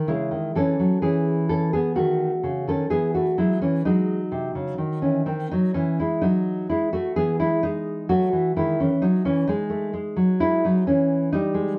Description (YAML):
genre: classical, baroque-style dance for nylon-string guitar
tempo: 64 BPM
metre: 4/4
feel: rubato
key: C# minor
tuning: A4 = 440 Hz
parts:
  - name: nylon-string guitar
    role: solo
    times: 0.0-11.8 s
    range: B#2 to A4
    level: -23 LUFS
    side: equal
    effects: none
room: light reverb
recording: none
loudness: -23 LUFS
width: mono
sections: 0.1-11.8 A section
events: none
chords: 0.1 C#m; 3.9 G#7; 5.8 Emaj13; 7.6 G#5